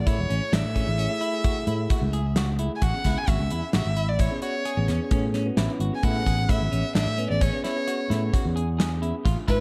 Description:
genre	progressive instrumental, band music in an uneven meter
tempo	131 BPM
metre	7/4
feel	straight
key	A major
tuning	A4 = 440 Hz
part	warm violin	melody	0.0-9.6 s	B4 to G#5	-32 LUFS	equal	none
part	bell-like tine electric piano	accompaniment	0.0-9.6 s	A3 to B4	-35 LUFS	equal	none
part	fretless electric bass	bass	0.0-9.6 s	E1 to A2	-28 LUFS	equal	none
part	semi-hollow electric guitar	arpeggios	0.1-9.6 s	C#4 to G#4	-37 LUFS	equal	none
part	gated 80s drum kit	drums	0.1-9.6 s	hi-hat, kick drum, snare drum	-28 LUFS	equal	none
room	light reverb, studio reverb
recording	none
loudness	-25 LUFS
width	mono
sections	0.0-9.6 A section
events	none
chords	0.0 F#m7; 2.8 Amaj7

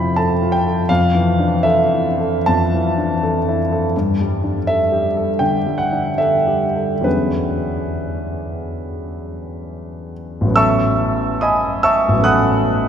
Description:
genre	classical, impressionist solo piano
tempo	65-84 BPM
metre	4/4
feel	rubato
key	unclear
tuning	A4 = 443 Hz
part	clear grand piano	solo	0.0-12.9 s	A1 to F#6	-15 LUFS	equal	none
room	wet cathedral reverb, RT60 6.6 s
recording	recorded in a church or concert hall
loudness	-15 LUFS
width	side -8 dB against mid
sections	0.0-10.6 A section; 10.6-12.9 B section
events	none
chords	0.0 Fmaj7; 0.9 Dmadd9/F; 3.9 Gsus2; 7.1 E13; 10.6 A69

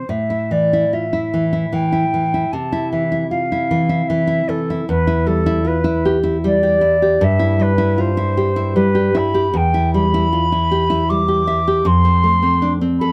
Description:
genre	romantic duo for flute and classical guitar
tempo	77 BPM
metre	3/4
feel	rubato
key	A minor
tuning	A4 = 440 Hz
part	silver concert flute	melody	0.0-13.1 s	A4 to D6	-21 LUFS	equal	none
part	nylon-string guitar	accompaniment	0.0-13.1 s	E2 to E5	-19 LUFS	equal	none
room	light reverb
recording	none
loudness	-17 LUFS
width	mono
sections	0.1-13.1 A section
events	none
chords	0.1 A5; 2.5 Cadd11; 4.9 Em; 7.2 Em/G; 9.6 Em; 11.9 F

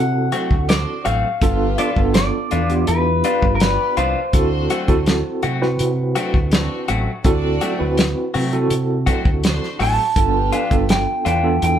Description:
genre	straight-eighth soul blues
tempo	82 BPM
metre	4/4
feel	straight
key	D mixolydian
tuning	A4 = 439 Hz
part	electric guitar through a small old amp	melody	0.0-5.4, 9.8-11.8 s	Bb4 to A5	-21 LUFS	equal	none
part	mellow tine electric piano	accompaniment	0.0-11.8 s	B3 to B4	-22 LUFS	right 3 dB	medium tremolo
part	fingered electric bass	bass	0.0-11.8 s	G1 to C3	-21 LUFS	equal	none
part	dark chamber string section	sustained chords	0.3-10.9 s	C4 to D5	-32 LUFS	right 1 dB	none
part	direct-recorded clean electric guitar	stabs	0.3-11.5 s	F3 to F#4	-25 LUFS	left 4 dB	spring reverb
part	warm soul drum kit	drums	0.3-11.8 s	hi-hat, kick drum, snare drum	-19 LUFS	equal	none
room	moderate studio reverb, RT60 0.5 s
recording	band playing live in one room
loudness	-16 LUFS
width	side -9 dB against mid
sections	0.0-11.8 A section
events	none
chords	0.0 D7; 1.4 G7; 4.3 D7; 10.2 G7

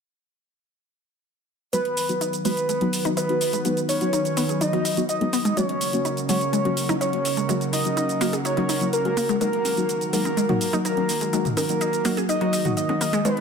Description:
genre	progressive house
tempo	125 BPM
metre	4/4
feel	straight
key	unclear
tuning	A4 = 440 Hz
part	soft octave-layered synth lead	melody	1.7-13.4 s	A#4 to D#5	-26 LUFS	right 1 dB	chorus, cassette tape, digital delay
part	soft round pluck	second line	1.7-13.4 s	A#4 to D#5	-34 LUFS	right 2 dB	none
part	lush unison pad	sustained chords	1.7-13.4 s	C#3 to B4	-28 LUFS	right 1 dB	chorus
part	analog pluck	arpeggios	1.7-13.3 s	F#3 to G#4	-28 LUFS	equal	chorus, dub echo
part	deep mellow chord stab	stabs	1.7-13.4 s	F#3 to F#4	-27 LUFS	left 2 dB	chorus, dub echo
part	electronic hi-hat and shaker	drums	1.7-13.4 s	none	-30 LUFS	right 1 dB	none
part	electronic congas and toms	percussion	9.7-13.0 s	none	-32 LUFS	left 2 dB	none
part	riser	sound effects	13.3-13.4 s	none	-54 LUFS	right 1 dB	none
room	moderate lush hall reverb, RT60 1.8 s, digital ambience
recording	none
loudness	-21 LUFS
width	side -6 dB against mid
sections	1.7-13.4 A section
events	filter sweep on synth arpeggio sound 1.7-13.4; filter sweep on synth stab 1.7-13.4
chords	1.7 B; 5.6 F#; 9.4 D#m

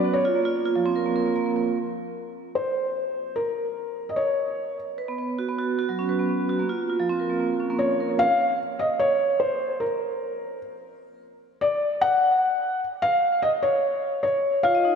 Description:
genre	IDM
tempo	149 BPM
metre	4/4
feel	straight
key	unclear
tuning	A4 = 442 Hz
part	felt-muted upright piano	melody	0.0-4.7, 7.8-15.0 s	Bb4 to Gb5	-22 LUFS	left 1 dB	diffuse ambient delay
part	vibraphone with medium mallets	arpeggios	0.0-1.8, 5.0-8.2, 14.6-15.0 s	F3 to Eb5	-25 LUFS	right 3 dB	diffuse ambient delay
room	wet lush hall reverb, RT60 3.1 s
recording	dreamy mix soaked in reverb, nothing above 10.4 kHz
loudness	-22 LUFS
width	side -6 dB against mid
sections	0.0-1.8 A section; 1.8-8.2 B section; 8.2-15.0 C section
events	none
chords	0.1 Bbmadd9; 1.8 N.C.; 5.0 Bsus2; 6.6 Bbmadd9; 8.2 N.C.

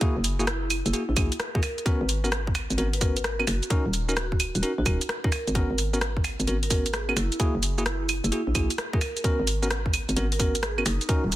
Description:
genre	UK garage, two-step garage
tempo	130 BPM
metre	4/4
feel	swing 66% on 16ths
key	G# minor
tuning	A4 = 440 Hz
part	bell-like tine electric piano	stabs	0.0-11.2 s	A#3 to A#4	-31 LUFS	equal	dub echo
part	electronic kick drum	drums	0.0-11.2 s	none	-26 LUFS	equal	small room reverb
part	garage drum kit	drums	0.0-11.4 s	claves, finger snaps, hi-hat, rim click, shaker	-29 LUFS	right 1 dB	small room reverb, soft clipping on snare
part	hollow knocking FM bass	bass	0.2-11.4 s	D#1 to A#1	-27 LUFS	equal	sidechain pumping
part	vibraphone with medium mallets	melody	0.5-11.1 s	D#4 to B4	-35 LUFS	right 2 dB	tape echo
part	noise sweep	sound effects	11.3-11.4 s	none	-44 LUFS	right 1 dB	none
room	light reverb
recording	dense, heavily limited modern master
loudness	-23 LUFS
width	side -15 dB against mid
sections	0.0-11.4 A section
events	noise sweep 11.3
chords	0.0 F#9; 1.9 G#m11; 3.7 D#m7; 5.5 G#m11; 7.4 F#9; 9.2 G#m11

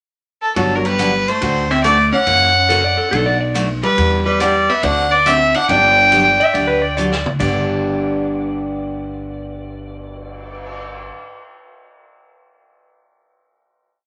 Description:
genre	country, western swing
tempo	140 BPM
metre	4/4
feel	swing 67% on 8ths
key	G major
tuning	A4 = 438 Hz
part	clear fiddle	melody	0.4-6.9 s	A4 to G5	-16 LUFS	equal	none
part	vintage hollow-body jazz guitar	second line	0.6-6.9 s	F#3 to D4	-22 LUFS	equal	none
part	picked steel-string acoustic guitar	accompaniment	0.6-11.1 s	G2 to A4	-25 LUFS	equal	none
part	upright bass	bass	0.6-11.1 s	G1 to F#2	-26 LUFS	equal	none
part	vintage drum kit	drums	0.6-10.7 s	crash cymbal, cymbal swell, hi-hat, kick drum, ride cymbal, snare drum, toms	-31 LUFS	equal	none
part	clean lap steel guitar	second line	2.7-3.6, 6.4-11.1 s	A4 to E5	-22 LUFS	equal	none
room	moderate studio ambience, RT60 0.4 s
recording	none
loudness	-15 LUFS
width	mono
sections	0.0-0.6 pickup bar; 0.6-7.4 A section; 7.4-10.8 final chord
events	drum fill 7.0-7.4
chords	0.0 N.C.; 0.6 Gmaj7; 1.4 D7; 2.3 F#7; 3.1 Bm7; 4.0 Em7; 4.8 D7; 5.7 Gmaj7; 7.4 G

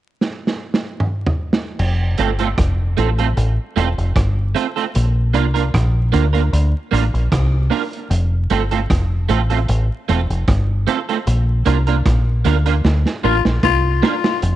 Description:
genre	roots reggae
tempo	76 BPM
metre	4/4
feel	straight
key	F major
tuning	A4 = 440 Hz
part	crunchy breakbeat drum kit	drums	0.2-14.6 s	crash cymbal, hi-hat, kick drum, rim click, snare drum, toms	-21 LUFS	right 2 dB	vintage 12-bit sampler grit
part	deep dub fingered electric bass	bass	1.8-14.6 s	E1 to D2	-16 LUFS	equal	none
part	electric guitar at the edge of break-up	accompaniment	2.2-14.1 s	A3 to Bb4	-21 LUFS	right 8 dB	ensemble chorus, tape echo
part	growling tenor saxophone	second line	13.2-14.4 s	F4	-18 LUFS	left 11 dB	tape echo
room	small room ambience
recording	1960s-style stereo with parts hard left and right, vinyl crackle, nothing above 10.5 kHz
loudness	-15 LUFS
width	side -13 dB against mid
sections	0.0-1.8 A section; 1.8-14.4 B section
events	drum fill 0.2-1.8, 12.8-14.4; band accent 11.3-14.4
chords	0.0 N.C.; 1.8 F; 4.9 Bb; 8.1 F; 11.3 Bb

